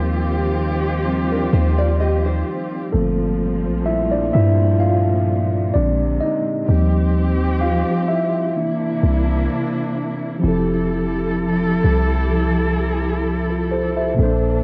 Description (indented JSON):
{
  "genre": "contemporary R&B",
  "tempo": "64 BPM",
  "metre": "4/4",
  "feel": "swing 54% on 16ths",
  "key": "F major",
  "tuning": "A4 = 440 Hz",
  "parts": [
    { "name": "mellow tine electric piano", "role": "accompaniment", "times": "0.0-14.6 s", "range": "Bb2 to F5", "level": "-24 LUFS", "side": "equal", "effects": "cassette tape" },
    { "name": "dark studio string section", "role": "sustained chords", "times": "0.0-14.6 s", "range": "Bb2 to A4", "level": "-25 LUFS", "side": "equal", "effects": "cassette tape" },
    { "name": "warm 808-style bass", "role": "bass", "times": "0.0-14.6 s", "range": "F1 to G2", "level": "-22 LUFS", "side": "equal", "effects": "none" },
    { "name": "nylon-string guitar", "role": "arpeggios", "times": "1.3-2.9 s", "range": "D4 to Eb5", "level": "-27 LUFS", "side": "equal", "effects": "cassette tape, tape echo" }
  ],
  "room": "little or no reverb",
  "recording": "home recording on cassette",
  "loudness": "-19 LUFS",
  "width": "mono",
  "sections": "0.0-10.4 A section; 10.4-14.6 B section",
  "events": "tine electric piano solo 0.0-10.4; break 9.5-10.4",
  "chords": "0.0 Eb69; 2.9 Gm11; 5.8 Bb9; 6.7 Eb69; 8.6 C9; 10.4 Fmaj9"
}